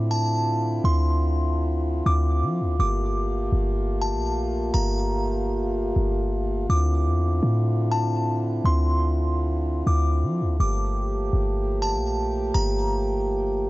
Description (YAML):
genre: hip hop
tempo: 123 BPM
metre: 4/4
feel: half-time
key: D minor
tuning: A4 = 443 Hz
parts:
  - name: delicate synth tine bell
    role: melody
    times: 0.0-13.7 s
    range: A5 to D6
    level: -30 LUFS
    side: equal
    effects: chorus, phaser, tremolo, low-pass filter, digital delay
  - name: warm French horn section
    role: sustained chords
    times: 0.0-13.7 s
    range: D3 to G4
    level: -27 LUFS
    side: equal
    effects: none
  - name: clean 808-style bass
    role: bass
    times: 0.0-13.7 s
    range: G1 to F3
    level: -23 LUFS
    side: equal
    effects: none
room: light reverb, studio reverb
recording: worn, warbling old tape, cassette tape, warbly pitch drift, nothing above 7.7 kHz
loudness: -21 LUFS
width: side -19 dB against mid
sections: 0.0-13.7 A section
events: none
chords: 0.0 Dm9; 2.8 Gm9; 6.7 Dm9; 10.6 Gm9